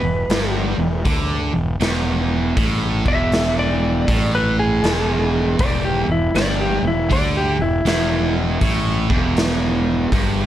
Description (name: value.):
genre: blues rock power trio and southern rock.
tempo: 79 BPM.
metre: 4/4.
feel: swing 64% on 8ths.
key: unclear.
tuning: A4 = 440 Hz.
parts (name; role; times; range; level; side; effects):
lightly driven lead guitar; melody; 0.0-8.3 s; E4 to E5; -22 LUFS; left 1 dB; analog delay.
distorted electric guitar; riff; 0.0-10.5 s; E2 to D3; -21 LUFS; right 1 dB; distortion.
fuzz fingered electric bass; bass; 0.0-10.5 s; E1 to D2; -22 LUFS; equal; overdrive.
raw garage drum kit; drums; 0.3-10.4 s; hi-hat, kick drum, snare drum; -22 LUFS; equal; none.
room: light reverb, small room ambience.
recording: none.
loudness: -16 LUFS.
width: side -12 dB against mid.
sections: 0.0-10.5 A section.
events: none.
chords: none.